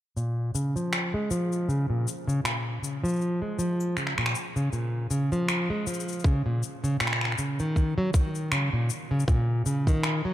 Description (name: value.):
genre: folktronica.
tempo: 79 BPM.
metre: 4/4.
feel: swing 56% on 16ths.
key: Db major.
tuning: A4 = 443 Hz.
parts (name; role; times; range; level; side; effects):
nylon-string guitar; arpeggios; 0.2-10.3 s; Bb2 to Ab3; -26 LUFS; equal; vintage 12-bit sampler grit, low-pass filter, tape echo.
electronic shaker and finger snaps; drums; 0.2-10.2 s; none; -30 LUFS; left 1 dB; overdrive.
electronic kick drum; drums; 6.2-10.0 s; none; -22 LUFS; equal; none.
room: light reverb.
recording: dark, warm production.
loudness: -25 LUFS.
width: side -13 dB against mid.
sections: 0.2-10.3 A section.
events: filter sweep on nylon-string guitar 0.2-10.3.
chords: none.